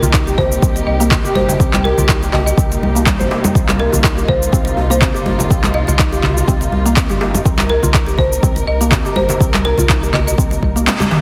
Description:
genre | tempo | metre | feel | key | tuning
afro house | 123 BPM | 4/4 | swing 55% on 16ths | C minor | A4 = 439 Hz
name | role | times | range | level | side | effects
folk marimba with hard mallets | melody | 0.0-10.3 s | Bb4 to Eb5 | -23 LUFS | equal | tape echo
dark studio string section | sustained chords | 0.0-11.2 s | C3 to Bb4 | -24 LUFS | equal | sidechain pumping
mallet-like synth pluck | arpeggios | 0.0-11.2 s | G3 to C5 | -25 LUFS | equal | lush chorus, sidechain pumping, tape echo
round analog bass | bass | 0.0-10.9 s | G1 to C2 | -22 LUFS | equal | sidechain pumping
afro-pop drum kit | drums | 0.0-11.2 s | cabasa, handclaps, toms | -21 LUFS | equal | overdrive
congas | percussion | 0.0-11.1 s | none | -24 LUFS | equal | none
electronic kick drum | drums | 0.1-10.7 s | none | -19 LUFS | equal | overdrive
djembe | percussion | 0.1-11.2 s | none | -29 LUFS | equal | none
room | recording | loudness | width
light reverb, small room ambience | heavily compressed radio sound, multiband compression | -14 LUFS | mono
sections
0.0-11.2 A section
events
drum fill 10.9-11.2; band accent 10.9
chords
0.0 Cm7

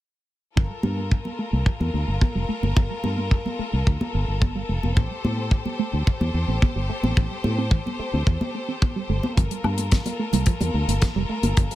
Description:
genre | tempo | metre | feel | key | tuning
nu-disco, nu disco | 109 BPM | 4/4 | straight | G dorian | A4 = 439 Hz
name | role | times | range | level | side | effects
bright studio string section | sustained chords | 0.6-11.8 s | F4 to C5 | -31 LUFS | left 2 dB | sidechain pumping
wide unison pluck | arpeggios | 0.6-11.8 s | E3 to C4 | -30 LUFS | right 3 dB | sidechain pumping, ping-pong delay
fingered electric bass | bass | 0.6-11.7 s | F1 to A2 | -25 LUFS | equal | none
kick drum | drums | 0.6-11.7 s | none | -19 LUFS | equal | none
congas | percussion | 0.8-11.5 s | none | -29 LUFS | equal | none
damped 70s drum kit | drums | 9.4-11.8 s | hi-hat, snare drum, woodblock | -30 LUFS | left 4 dB | none
room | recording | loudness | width
studio ambience | none | -21 LUFS | side -15 dB against mid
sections
0.6-11.8 A section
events
filter sweep on synth arpeggio sound 0.6-11.8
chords
0.6 Gm9; 5.0 Am7; 9.4 Gm9

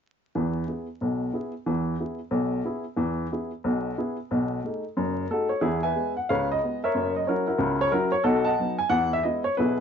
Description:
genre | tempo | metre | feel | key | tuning
jazz, stride piano | 182 BPM | 4/4 | swing 65% on 8ths | E major | A4 = 440 Hz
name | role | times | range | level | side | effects
warm upright piano | solo | 0.4-9.8 s | F#1 to A5 | -24 LUFS | equal | none
room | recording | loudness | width
moderate studio reverb, RT60 0.6 s | vinyl crackle, nothing above 7.5 kHz | -24 LUFS | side -7 dB against mid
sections
0.3-5.6 A section; 5.6-9.8 B section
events
none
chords
0.3 E; 4.3 B6; 5.6 E; 6.3 C#5; 6.9 F#7; 8.2 B7; 8.9 E

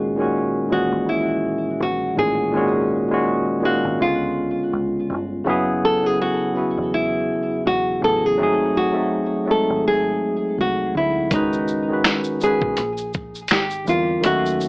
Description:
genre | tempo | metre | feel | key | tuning
lo-fi hip hop | 82 BPM | 4/4 | swing 58% on 16ths | C# dorian | A4 = 439 Hz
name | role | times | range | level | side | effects
nylon-string guitar | melody | 0.0-14.7 s | D#4 to A4 | -21 LUFS | equal | low-pass filter, tape echo
bright tine electric piano | accompaniment | 0.0-14.7 s | A#2 to E#5 | -21 LUFS | equal | medium stereo tremolo, cassette tape, low-pass filter
deep dub fingered electric bass | bass | 0.0-14.7 s | E1 to E2 | -31 LUFS | equal | none
dusty soul sampler-style drum kit | drums | 11.3-14.7 s | finger snaps, hi-hat, kick drum, shaker, snare drum | -21 LUFS | equal | none
room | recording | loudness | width
moderate studio reverb, RT60 0.6 s | cassette tape, AM radio sound | -18 LUFS | side -29 dB against mid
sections
0.0-14.7 A section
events
none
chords
0.0 C#m69; 2.5 G#5; 4.0 C#7b9; 5.5 F#9sus4; 8.4 G#7b9; 11.3 C#sus2; 12.8 A#7

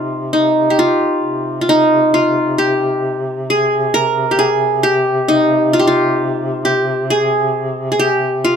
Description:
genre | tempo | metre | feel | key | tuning
Arabic maqam ensemble | 133 BPM (eighths) | 10/8 | straight | C maqam bayati | A4 = 440 Hz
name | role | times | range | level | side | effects
qanun | melody | 0.0-8.6 s | Eb4 to Bb4 | -13 LUFS | equal | none
warm duduk | drone | 0.0-8.6 s | C3 | -23 LUFS | equal | none
room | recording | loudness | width
little or no reverb | close, detailed microphones | -13 LUFS | side -7 dB against mid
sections
0.0-8.6 A section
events
none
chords
none

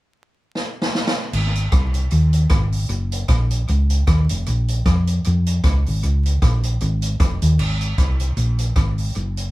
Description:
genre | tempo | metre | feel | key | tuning
ska | 154 BPM | 4/4 | swing 56% on 8ths | Ab mixolydian | A4 = 440 Hz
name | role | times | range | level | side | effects
swinging big-band drum kit | drums | 0.6-9.5 s | crash cymbal, hi-hat, kick drum, rim click, snare drum | -21 LUFS | equal | none
hollow-body short-scale fingered electric bass | bass | 1.3-9.5 s | F1 to F2 | -18 LUFS | equal | none
room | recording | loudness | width
light reverb | band playing live in one room, vinyl crackle | -17 LUFS | side -18 dB against mid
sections
0.0-1.3 A section; 1.3-7.6 B section; 7.6-9.5 C section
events
drum fill 0.6-1.3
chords
none

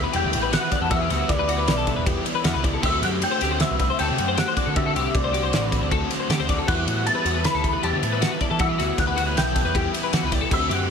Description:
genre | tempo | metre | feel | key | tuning
math rock and midwest emo | 156 BPM | 5/4 | straight | unclear | A4 = 440 Hz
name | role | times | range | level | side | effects
twelve-string electric guitar | accompaniment | 0.0-0.9 s | G3 | -42 LUFS | right 13 dB | none
twelve-string electric guitar | arpeggios | 0.0-10.9 s | F#4 to D5 | -28 LUFS | left 10 dB | ensemble chorus, plate reverb, analog delay
overdriven electric guitar | riff | 0.0-10.9 s | D3 to F#4 | -28 LUFS | right 2 dB | none
overdriven picked electric bass | bass | 0.0-10.9 s | E1 to E3 | -27 LUFS | equal | none
loose indie drum kit | drums | 0.1-10.8 s | crash cymbal, kick drum, ride cymbal, snare drum | -25 LUFS | equal | none
electric guitar through a small old amp | melody | 0.2-10.9 s | D5 to B5 | -27 LUFS | left 1 dB | ensemble chorus, plate reverb, analog delay
room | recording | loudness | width
light reverb | none | -20 LUFS | side -6 dB against mid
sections
0.0-10.9 A section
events
none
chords
0.0 Em11; 2.8 D9sus4; 6.7 Em11

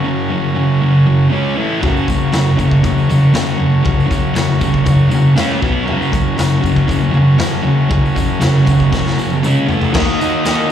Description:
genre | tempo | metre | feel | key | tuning
garage rock duo or trio | 118 BPM | 4/4 | straight | F# major | A4 = 440 Hz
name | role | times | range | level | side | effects
combo organ | sustained chords | 0.0-10.7 s | C#4 to D#5 | -23 LUFS | left 2 dB | none
thick fuzz guitar | riff | 0.0-10.7 s | F#2 to D#4 | -13 LUFS | equal | distortion, slapback echo
raw garage drum kit | drums | 1.8-10.6 s | crash cymbal, kick drum, snare drum, toms | -18 LUFS | left 1 dB | none
tambourine | percussion | 2.0-10.6 s | none | -35 LUFS | left 3 dB | none
room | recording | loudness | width
small room ambience | live gig heard through the venue's PA, club reverb | -12 LUFS | side -10 dB against mid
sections
0.0-9.9 A section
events
drum fill 8.9-9.9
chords
0.0 F#; 1.3 C#5; 1.6 A5; 1.8 F#; 5.4 C#5; 5.6 B5; 5.9 F#; 9.4 C#5; 9.7 A5; 9.9 D#m

